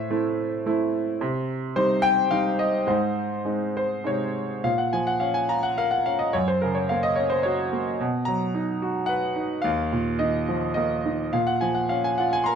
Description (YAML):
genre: classical, lyrical solo piano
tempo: 99-112 BPM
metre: 3/4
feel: rubato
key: Bb minor from 4.6 s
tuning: A4 = 440 Hz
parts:
  - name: bright concert grand piano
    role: solo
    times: 0.0-12.6 s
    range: Eb2 to C6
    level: -22 LUFS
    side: equal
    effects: none
room: moderate studio reverb, RT60 0.6 s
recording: dark, warm production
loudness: -22 LUFS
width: side -7 dB against mid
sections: 0.0-4.6 A section; 4.6-12.6 B section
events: none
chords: 0.0 Am; 1.2 Cm; 2.9 Ab; 4.6 Bbm; 6.3 Gb; 8.0 B; 9.6 Ebsus2; 11.3 Bbm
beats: 0.12 0.67 | 1.21 1.76 2.31 | 2.88 3.45 4.05 | 4.64 5.22 5.78 | 6.35 6.91 7.46 | 8.00 8.55 9.09 | 9.64 10.20 10.77 | 11.34 11.91 12.48